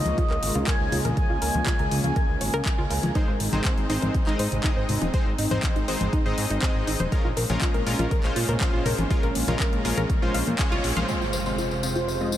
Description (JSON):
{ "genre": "progressive house", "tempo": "121 BPM", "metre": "4/4", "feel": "straight", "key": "unclear", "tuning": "A4 = 440 Hz", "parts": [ { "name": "expressive synth lead", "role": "melody", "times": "0.0-3.1, 11.1-12.4 s", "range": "C5 to Ab5", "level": "-32 LUFS", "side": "right 1 dB", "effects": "lush chorus, sidechain pumping, diffuse ambient delay" }, { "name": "warm analog pad", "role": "sustained chords", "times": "0.0-12.4 s", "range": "F2 to C5", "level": "-31 LUFS", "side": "right 1 dB", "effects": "chorus, sidechain pumping" }, { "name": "fat analog bass", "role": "bass", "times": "0.1-11.0 s", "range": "Eb1 to Bb2", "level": "-28 LUFS", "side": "equal", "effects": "tube saturation, sidechain pumping" }, { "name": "house drum kit", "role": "drums", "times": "0.1-11.1 s", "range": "handclaps, hi-hat", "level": "-32 LUFS", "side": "left 1 dB", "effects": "overdrive, low-pass filter on hats, small room ambience, low-pass filter on cymbals, low-pass filter on snare" }, { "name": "congas", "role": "percussion", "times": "0.1-11.1 s", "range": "none", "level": "-33 LUFS", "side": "left 2 dB", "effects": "none" }, { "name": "analog pluck", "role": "arpeggios", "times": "0.2-12.4 s", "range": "Eb4 to F5", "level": "-32 LUFS", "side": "equal", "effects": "chorus, sidechain pumping, diffuse ambient delay" }, { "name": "electronic kick drum", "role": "drums", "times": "0.2-10.7 s", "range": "none", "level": "-25 LUFS", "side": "equal", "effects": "overdrive, small room ambience" }, { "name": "supersaw stab", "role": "stabs", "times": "3.2-12.4 s", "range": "Ab3 to Eb5", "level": "-30 LUFS", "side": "left 1 dB", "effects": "cassette tape, sidechain pumping, low-pass filter, diffuse ambient delay" }, { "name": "tambourine", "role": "percussion", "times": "11.1-12.4 s", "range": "none", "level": "-34 LUFS", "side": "left 4 dB", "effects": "none" }, { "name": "impact", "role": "sound effects", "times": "11.1-12.4 s", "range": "none", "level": "-32 LUFS", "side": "equal", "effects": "none" } ], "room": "moderate huge ambient reverb, RT60 8.8 s", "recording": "dreamy mix soaked in reverb", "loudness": "-22 LUFS", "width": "side -12 dB against mid", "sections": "0.0-11.1 A section; 11.1-12.4 B section", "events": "filter sweep on synth pluck 0.0-11.1; band accent 10.6; impact 11.1-12.4; filter sweep on supersaw synth 11.1-12.4", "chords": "0.0 Db6; 3.2 Ab; 7.1 Bbm7; 11.1 Fm" }